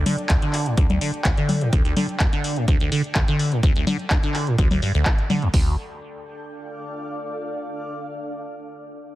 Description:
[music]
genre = acid house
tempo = 126 BPM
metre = 4/4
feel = straight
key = D minor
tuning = A4 = 440 Hz
[part]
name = liquid acid bass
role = riff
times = 0.0-5.8 s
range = D2 to D3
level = -22 LUFS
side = equal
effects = phaser, wide subtle chorus
[part]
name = granular cloud pad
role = texture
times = 0.0-7.4 s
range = D4 to G5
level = -34 LUFS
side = equal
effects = built-in reverb, sidechain pumping
[part]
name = electro analog drum machine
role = drums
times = 0.1-5.5 s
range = congas, handclaps, hi-hat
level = -25 LUFS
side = left 1 dB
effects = low-pass filter on hats, low-pass filter on perc, low-pass filter on snare, low-pass filter on room
[part]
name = punchy analog drum machine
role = drums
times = 0.3-5.7 s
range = hi-hat, kick drum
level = -20 LUFS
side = equal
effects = none
[sound]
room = little or no reverb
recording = heavily compressed radio sound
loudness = -19 LUFS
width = side -16 dB against mid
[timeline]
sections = 0.0-5.5 A section; 5.5-7.4 B section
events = fade-out on ambient pad 0.0-5.5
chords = 0.0 D5; 5.5 Dm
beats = 0.30 0.78 1.25 | 1.73 2.20 2.68 3.16 | 3.63 4.11 4.58 5.06 | 5.54 6.01 6.49 6.97

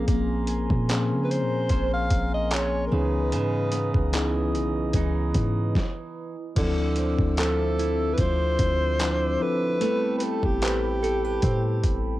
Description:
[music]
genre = contemporary R&B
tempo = 74 BPM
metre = 4/4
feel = swing 54% on 16ths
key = unclear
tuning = A4 = 442 Hz
[part]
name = mellow tine electric piano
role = accompaniment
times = 0.0-12.2 s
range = E3 to C5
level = -28 LUFS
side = left 2 dB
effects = slow stereo tremolo
[part]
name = nylon-string guitar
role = arpeggios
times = 0.0-12.2 s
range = C#3 to C5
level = -32 LUFS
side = right 6 dB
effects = analog delay
[part]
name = warm 808-style bass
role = bass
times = 0.0-12.2 s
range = A1 to Db3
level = -27 LUFS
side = equal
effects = tube saturation
[part]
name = glass harmonica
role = sustained chords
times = 0.1-12.2 s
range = C4 to E6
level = -36 LUFS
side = equal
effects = sidechain pumping
[part]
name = dusty soul sampler-style drum kit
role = drums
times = 0.1-12.0 s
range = crash cymbal, handclaps, hi-hat, kick drum, snare drum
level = -27 LUFS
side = equal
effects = overdrive, cassette tape
[part]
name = breathy alto saxophone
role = melody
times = 1.2-12.1 s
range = G4 to F5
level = -27 LUFS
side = left 1 dB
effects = none
[sound]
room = little or no reverb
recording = home recording on cassette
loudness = -22 LUFS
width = side -16 dB against mid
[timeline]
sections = 0.0-6.6 A section; 6.6-12.2 B section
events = stop 5.8-6.6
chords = 0.0 Bbm9; 2.9 C#m9; 6.6 Dm9; 9.8 Am9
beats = | 0.08 0.89 1.70 2.51 | 3.32 4.13 4.95 5.76 | 6.57 7.38 8.19 9.00 | 9.81 10.62 11.43

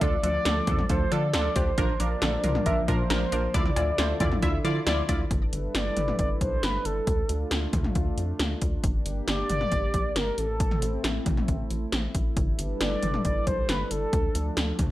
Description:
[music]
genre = synth-pop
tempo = 136 BPM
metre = 4/4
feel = straight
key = D minor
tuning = A4 = 443 Hz
[part]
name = mellow horn-like synth lead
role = melody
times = 0.0-14.8 s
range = A4 to E5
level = -30 LUFS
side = equal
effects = chorus, tape echo
[part]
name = funky polysynth comp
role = accompaniment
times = 0.0-5.2 s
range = D4 to E5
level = -30 LUFS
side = right 2 dB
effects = chorus
[part]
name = chorused pulse-width pad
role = sustained chords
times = 0.0-14.9 s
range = D3 to B4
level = -34 LUFS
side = equal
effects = none
[part]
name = analog pluck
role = arpeggios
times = 0.0-5.2 s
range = D3 to D5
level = -37 LUFS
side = left 2 dB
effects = none
[part]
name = rubbery square bass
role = bass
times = 0.0-14.9 s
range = G1 to D3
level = -30 LUFS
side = equal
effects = none
[part]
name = 80s electronic pad drums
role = drums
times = 0.0-14.9 s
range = cowbell, hi-hat, kick drum, snare drum, toms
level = -27 LUFS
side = equal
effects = gated reverb on snare and toms
[sound]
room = light reverb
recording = none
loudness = -24 LUFS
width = side -15 dB against mid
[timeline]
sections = 0.0-5.3 A section; 5.3-14.9 B section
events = none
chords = 0.0 Dm; 1.8 Bb; 3.5 Dmadd9; 5.3 G6; 7.1 Dm; 8.8 Gm; 10.4 Am; 12.4 G6; 14.1 Dm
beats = | 0.01 0.45 0.90 1.34 | 1.78 2.22 2.66 3.10 | 3.54 3.98 4.42 4.87 | 5.31 5.75 6.19 6.63 | 7.07 7.51 7.95 8.39 | 8.84 9.28 9.72 10.16 | 10.60 11.04 11.48 11.93 | 12.37 12.81 13.25 13.69 | 14.13 14.57

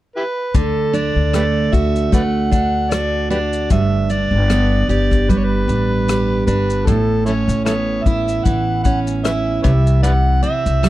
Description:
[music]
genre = acoustic pop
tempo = 76 BPM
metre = 4/4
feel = swing 55% on 16ths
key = D major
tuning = A4 = 440 Hz
[part]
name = overdriven harmonica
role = melody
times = 0.2-10.9 s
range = E4 to F#5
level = -21 LUFS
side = equal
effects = none
[part]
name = picked steel-string acoustic guitar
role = accompaniment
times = 0.5-10.9 s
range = G2 to G4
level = -19 LUFS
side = right 3 dB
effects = none
[part]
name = upright bass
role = bass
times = 0.5-10.9 s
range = G1 to D2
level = -19 LUFS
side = left 1 dB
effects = none
[part]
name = soft brush drum kit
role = drums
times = 0.5-10.9 s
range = kick drum, rim click, shaker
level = -18 LUFS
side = left 2 dB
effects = none
[sound]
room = little or no reverb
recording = dark, warm production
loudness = -14 LUFS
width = side -15 dB against mid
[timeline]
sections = 0.5-10.9 A section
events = none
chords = 0.0 N.C.; 0.5 D; 3.7 G; 6.9 Aadd9; 9.6 C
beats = | 0.55 1.34 2.13 2.92 | 3.71 4.50 5.29 6.08 | 6.88 7.67 8.46 9.25 | 10.04 10.84

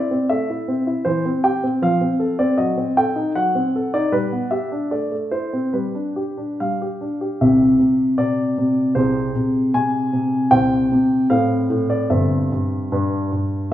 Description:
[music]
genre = classical-period piano sonatina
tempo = 68-81 BPM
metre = 2/4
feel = rubato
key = C major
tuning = A4 = 440 Hz
[part]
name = warm baby grand piano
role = solo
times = 0.0-13.7 s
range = G1 to Ab5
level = -17 LUFS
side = equal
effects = none
[sound]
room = wet recital hall reverb, RT60 1.4 s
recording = recorded in a church or concert hall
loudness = -17 LUFS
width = side -12 dB against mid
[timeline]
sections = 0.0-7.4 A section; 7.4-13.7 B section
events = none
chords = 0.0 Am; 1.1 C/E; 1.8 F; 2.6 F#dim7; 4.1 G; 4.9 Am; 5.7 G; 7.4 C; 9.0 Ab/C; 10.5 N.C.; 11.3 F/A; 12.1 C/G; 12.9 G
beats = 0.31 | 1.06 1.81 | 2.57 3.35 | 4.12 4.91 | 5.74 6.60 | 7.42 8.19 | 8.96 9.75 | 10.52 11.30 | 12.11 12.92

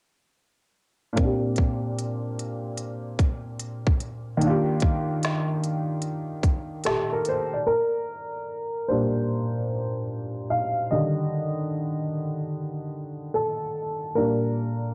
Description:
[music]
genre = lo-fi hip hop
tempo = 74 BPM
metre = 4/4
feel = swing 63% on 16ths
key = Bb major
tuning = A4 = 437 Hz
[part]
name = warm upright piano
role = accompaniment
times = 1.1-14.9 s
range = Bb2 to F5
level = -28 LUFS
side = equal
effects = low-pass filter, plate reverb
[part]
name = organic electronic drum kit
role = drums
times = 1.2-7.5 s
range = finger snaps, hi-hat, kick drum, snare drum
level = -27 LUFS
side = equal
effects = overdrive, vintage 12-bit sampler grit
[sound]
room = moderate studio reverb, RT60 0.6 s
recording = cassette tape, low-pass filter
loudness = -27 LUFS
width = mono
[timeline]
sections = 1.2-7.7 A section; 7.7-14.9 B section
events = filter sweep on upright piano 1.2-7.7; upright piano solo 7.7-14.9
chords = 1.2 Bb69; 4.4 Ebmaj9; 7.7 Bb69; 10.9 Ebmaj7; 14.1 Bb6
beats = | 1.18 1.99 2.80 3.61 | 4.42 5.23 6.04 6.85 | 7.66 8.47 9.28 10.10 | 10.90 11.72 12.53 13.34 | 14.15

